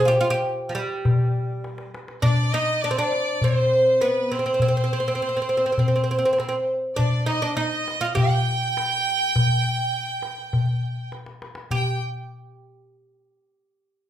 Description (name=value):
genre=Arabic maqam ensemble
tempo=101 BPM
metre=4/4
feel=straight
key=G maqam hijaz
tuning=A4 = 439 Hz
part: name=oud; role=melody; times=0.0-12.0 s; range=F3 to G4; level=-22 LUFS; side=right 1 dB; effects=none
part: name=darbuka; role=percussion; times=0.5-12.0 s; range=none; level=-24 LUFS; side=left 2 dB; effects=none
part: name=bright chamber violin section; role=second line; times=2.2-12.0 s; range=B4 to G5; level=-26 LUFS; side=right 1 dB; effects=none
room=wet large studio reverb, RT60 0.8 s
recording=band playing live in one room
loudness=-20 LUFS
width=side -11 dB against mid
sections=0.0-2.2 A section; 2.2-11.7 B section; 11.7-14.1 C section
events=drum fill 1.6-2.2, 11.1-11.7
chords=none